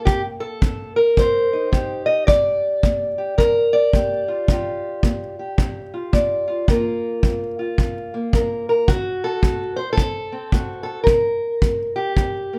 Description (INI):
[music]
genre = acoustic country blues, solo or duo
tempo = 109 BPM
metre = 4/4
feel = swing 63% on 8ths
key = G minor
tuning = A4 = 440 Hz
[part]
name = fingerpicked steel-string acoustic guitar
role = melody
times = 0.0-12.6 s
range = G2 to Eb5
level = -22 LUFS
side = equal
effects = none
[part]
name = kick drum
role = drums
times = 0.1-12.3 s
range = none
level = -22 LUFS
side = equal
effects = none
[sound]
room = little or no reverb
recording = close, detailed microphones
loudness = -20 LUFS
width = mono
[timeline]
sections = 0.0-12.6 A section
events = none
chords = 0.1 Cm7; 2.3 Gm7; 8.9 D7; 11.1 C5